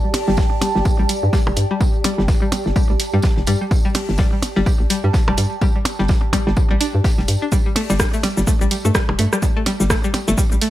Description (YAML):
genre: minimal techno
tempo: 126 BPM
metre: 4/4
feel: swing 59% on 16ths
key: unclear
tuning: A4 = 440 Hz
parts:
  - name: string-like resonator pluck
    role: riff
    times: 0.0-10.7 s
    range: G3 to G4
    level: -23 LUFS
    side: left 1 dB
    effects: chorus, cassette tape, sidechain pumping, digital delay
  - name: granular cloud pad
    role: texture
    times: 0.0-10.7 s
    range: G4 to A5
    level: -28 LUFS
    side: right 2 dB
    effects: built-in reverb, sidechain pumping
  - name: modern studio drum kit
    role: drums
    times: 0.1-10.7 s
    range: hi-hat, snare drum, tambourine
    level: -34 LUFS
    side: equal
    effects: sidechain pumping on hats, high-pass filter on hats, high-pass filter on snare, sidechain pumping on perc, high-pass filter on perc, high-pass filter on room
  - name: punchy analog drum machine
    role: drums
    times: 0.1-10.7 s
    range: hi-hat, rim click, shaker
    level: -22 LUFS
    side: right 1 dB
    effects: none
  - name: percussion blips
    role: percussion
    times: 0.1-10.2 s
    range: none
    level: -26 LUFS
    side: right 1 dB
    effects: digital delay
  - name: hollow knocking FM bass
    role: bass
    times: 0.3-10.6 s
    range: F1 to G2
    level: -19 LUFS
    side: equal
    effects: sidechain pumping
  - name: electronic kick drum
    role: drums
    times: 0.4-10.5 s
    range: none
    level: -18 LUFS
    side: equal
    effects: none
room: little or no reverb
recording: none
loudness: -15 LUFS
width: side -14 dB against mid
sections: 0.0-10.7 A section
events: none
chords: 0.0 G5